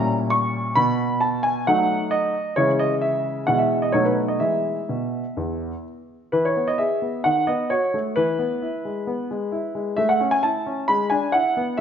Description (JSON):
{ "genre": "classical-period piano sonatina", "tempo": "132 BPM", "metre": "4/4", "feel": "rubato", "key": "E major", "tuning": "A4 = 436 Hz", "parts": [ { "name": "clear grand piano", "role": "solo", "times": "0.0-11.8 s", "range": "E2 to C#6", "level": "-20 LUFS", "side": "equal", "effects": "none" } ], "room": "wet recital hall reverb, RT60 1.8 s", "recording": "nothing above 7.5 kHz", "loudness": "-20 LUFS", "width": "side -8 dB against mid", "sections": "0.0-6.3 A section; 6.3-11.8 B section", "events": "none", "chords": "0.0 A#dim7; 0.8 B7; 2.6 C#m; 3.5 E/B; 3.9 B7; 4.4 E; 7.3 B7/D#; 8.2 E; 10.0 A; 10.9 E7/G#" }